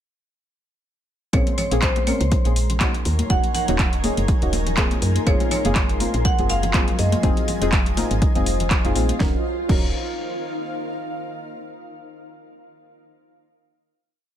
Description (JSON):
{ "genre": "deep house", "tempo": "122 BPM", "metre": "4/4", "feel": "swing 56% on 16ths", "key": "Eb dorian", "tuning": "A4 = 440 Hz", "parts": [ { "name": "marimba with hard mallets", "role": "melody", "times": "1.3-8.7 s", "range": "C5 to Gb5", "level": "-28 LUFS", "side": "right 2 dB", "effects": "vintage 12-bit sampler grit, ping-pong delay" }, { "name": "warm analog pad", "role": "sustained chords", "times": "1.3-9.4 s", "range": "Gb3 to C6", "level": "-32 LUFS", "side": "equal", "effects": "chorus, sidechain pumping" }, { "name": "deep mellow chord stab", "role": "stabs", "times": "1.3-9.9 s", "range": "C3 to Bb4", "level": "-27 LUFS", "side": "left 1 dB", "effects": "chorus, sidechain pumping, ping-pong delay" }, { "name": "woody FM bass", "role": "bass", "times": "1.3-9.9 s", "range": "Eb1 to Gb2", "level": "-23 LUFS", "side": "equal", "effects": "tube saturation, sidechain pumping" }, { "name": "deep house drum kit", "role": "drums", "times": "1.3-9.8 s", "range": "crash cymbal, handclaps, hi-hat, snare drum", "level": "-27 LUFS", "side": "equal", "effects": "overdrive, studio ambience" }, { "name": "electronic kick drum", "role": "drums", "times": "1.3-9.8 s", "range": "none", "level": "-21 LUFS", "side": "equal", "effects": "overdrive, studio ambience" }, { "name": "granular cloud pad", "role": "texture", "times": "2.6-11.1 s", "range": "Gb3 to C6", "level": "-30 LUFS", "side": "left 1 dB", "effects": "built-in reverb, sidechain pumping" }, { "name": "congas", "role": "percussion", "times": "1.5-9.2 s", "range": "none", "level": "-31 LUFS", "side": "left 4 dB", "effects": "overdrive, studio ambience" } ], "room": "little or no reverb", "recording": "none", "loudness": "-18 LUFS", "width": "side -10 dB against mid", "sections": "1.3-9.2 drop; 9.2-11.2 final chord", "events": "drop 1.3-9.2", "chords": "1.3 Bbm9; 3.1 Ebm7; 5.0 Gbmaj9#11; 7.2 Fm7; 9.2 Ebm7" }